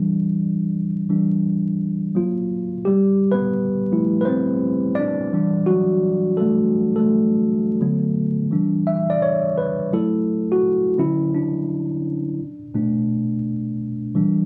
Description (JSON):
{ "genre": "R&B", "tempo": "85 BPM", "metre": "4/4", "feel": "swing 64% on 16ths", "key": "E dorian from 8.5 s", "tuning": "A4 = 440 Hz", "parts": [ { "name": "tine electric piano", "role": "solo", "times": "0.0-14.5 s", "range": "B2 to E5", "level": "-20 LUFS", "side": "equal", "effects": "overdrive" } ], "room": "moderate echo chamber reverb, RT60 1.5 s", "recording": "worn, warbling old tape, cassette tape, vinyl crackle, warbly pitch drift", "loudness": "-21 LUFS", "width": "mono", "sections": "0.0-8.5 A section; 8.5-14.5 B section", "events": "tine electric piano solo 0.0-8.5, 8.5-14.5", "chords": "0.0 Em7; 2.1 F#maj7; 2.9 Fmaj9; 5.3 Em11; 7.8 D6; 8.5 Em7; 9.9 F#m7; 11.0 Dmaj7; 12.4 Bm7" }